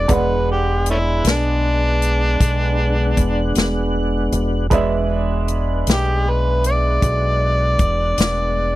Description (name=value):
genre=slow blues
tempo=52 BPM (dotted quarters)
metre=12/8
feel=straight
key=E mixolydian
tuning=A4 = 440 Hz
part: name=overdriven harmonica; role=melody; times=0.0-8.8 s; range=A3 to D5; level=-20 LUFS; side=equal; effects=none
part: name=clear upright piano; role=accompaniment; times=0.0-8.8 s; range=G#3 to F#5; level=-25 LUFS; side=right 4 dB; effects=none
part: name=tonewheel organ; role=sustained chords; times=0.0-8.8 s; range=G#3 to F#5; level=-25 LUFS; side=equal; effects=chorus vibrato, slow rotary speaker
part: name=deep dub fingered electric bass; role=bass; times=0.0-8.8 s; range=E1 to B1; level=-20 LUFS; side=equal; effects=none
part: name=swinging big-band drum kit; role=drums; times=0.1-8.4 s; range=hi-hat, kick drum, snare drum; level=-19 LUFS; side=left 1 dB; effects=none
room=little or no reverb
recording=dry, close 1970s-style studio recording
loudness=-16 LUFS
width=side -16 dB against mid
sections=0.0-8.8 A section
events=none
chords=0.0 E9